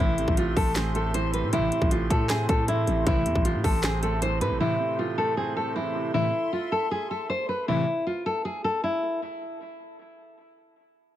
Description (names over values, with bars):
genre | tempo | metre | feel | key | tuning
hip hop, trap | 156 BPM | 4/4 | half-time | A harmonic minor | A4 = 441 Hz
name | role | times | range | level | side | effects
nylon-string guitar | melody | 0.0-9.2 s | E4 to C5 | -27 LUFS | left 1 dB | low-pass filter, tape echo
felt-muted upright piano | accompaniment | 0.0-6.2 s | A2 to C4 | -31 LUFS | right 5 dB | low-pass filter
dark analog pad | sustained chords | 0.0-7.7 s | A4 to C6 | -37 LUFS | left 1 dB | chorus
big bright polysynth | stabs | 0.0-7.8 s | A2 to E3 | -29 LUFS | left 1 dB | none
growling 808-style bass | bass | 0.0-4.6 s | G#1 to A2 | -28 LUFS | equal | none
trap drum kit | drums | 0.2-4.5 s | handclaps, hi-hat, kick drum, snare drum | -26 LUFS | equal | none
room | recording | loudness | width
light reverb | none | -23 LUFS | side -12 dB against mid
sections
0.0-9.2 A section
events
none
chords
0.0 Am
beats
0.37 0.76 1.14 | 1.53 1.91 2.30 2.68 | 3.07 3.45 3.83 4.22 | 4.61 4.99 5.37 5.76 | 6.14 6.53 6.91 7.30 | 7.68 8.07 8.45 8.84